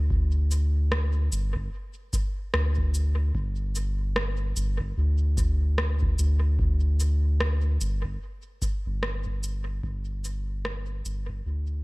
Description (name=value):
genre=ambient dub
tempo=74 BPM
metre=4/4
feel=swing 60% on 16ths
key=unclear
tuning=A4 = 439 Hz
part: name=soft dub sub bass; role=bass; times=0.0-11.8 s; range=G1 to D2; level=-24 LUFS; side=equal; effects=tube saturation
part: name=electronic kick drum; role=drums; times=0.1-11.4 s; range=none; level=-30 LUFS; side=equal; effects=none
part: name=electronic cabasa and rim click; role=drums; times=0.5-11.2 s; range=none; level=-32 LUFS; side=equal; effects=dub echo
room=little or no reverb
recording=none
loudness=-24 LUFS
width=side -24 dB against mid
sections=0.0-11.8 A section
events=fade-out 7.7-11.8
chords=none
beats=| 0.11 0.92 1.73 2.54 | 3.35 4.16 4.97 5.78 | 6.59 7.40 8.21 9.03 | 9.84 10.65 11.46